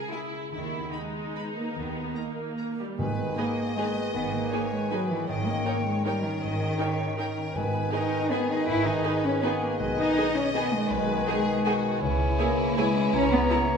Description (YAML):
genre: classical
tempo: 138-174 BPM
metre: 3/4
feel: rubato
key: G# minor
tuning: A4 = 441 Hz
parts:
  - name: rich symphonic violin section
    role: second line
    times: 0.0-13.6 s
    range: D#4 to A#5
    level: -37 LUFS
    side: equal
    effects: none
  - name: concert harp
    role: arpeggios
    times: 0.0-13.8 s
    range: G#2 to C#5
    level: -35 LUFS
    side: left 6 dB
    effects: none
  - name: warm studio violin section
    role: melody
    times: 0.1-13.8 s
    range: E4 to B5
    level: -36 LUFS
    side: left 2 dB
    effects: none
  - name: rich symphonic viola section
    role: accompaniment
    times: 0.1-13.6 s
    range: G3 to A#4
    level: -35 LUFS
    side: right 2 dB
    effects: none
  - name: clear symphonic double bass section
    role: bass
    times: 0.5-13.4 s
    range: G#1 to D#2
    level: -34 LUFS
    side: right 4 dB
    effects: none
  - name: warm studio cello section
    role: bass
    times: 0.5-13.8 s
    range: D#3 to E4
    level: -30 LUFS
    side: right 1 dB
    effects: none
  - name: clear clarinet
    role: second line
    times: 3.0-13.8 s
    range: B4 to C#5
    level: -36 LUFS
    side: right 3 dB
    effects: none
  - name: concert flute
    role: second line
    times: 3.0-13.8 s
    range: G5 to A#5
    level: -33 LUFS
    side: left 4 dB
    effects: none
  - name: warm bassoon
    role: accompaniment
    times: 3.0-13.8 s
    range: D#3 to E3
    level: -34 LUFS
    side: right 1 dB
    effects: none
  - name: timpani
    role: percussion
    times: 3.0-3.5, 7.6-8.1 s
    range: G#2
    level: -37 LUFS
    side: equal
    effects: none
  - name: mellow French horn section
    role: sustained chords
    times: 3.4-13.8 s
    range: D#3 to E4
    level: -32 LUFS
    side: left 3 dB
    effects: none
room: wet scoring stage reverb, RT60 1.7 s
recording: minimal, uncompressed stereo recording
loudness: -24 LUFS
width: side -6 dB against mid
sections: 0.0-3.0 A section; 3.0-13.8 B section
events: none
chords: 0.0 C#m; 0.5 G#m/D#; 1.8 D#; 3.0 G#m; 5.3 D#7/G#; 7.6 G#m; 9.8 G#m/B; 12.0 C#m; 13.1 A#dim/C#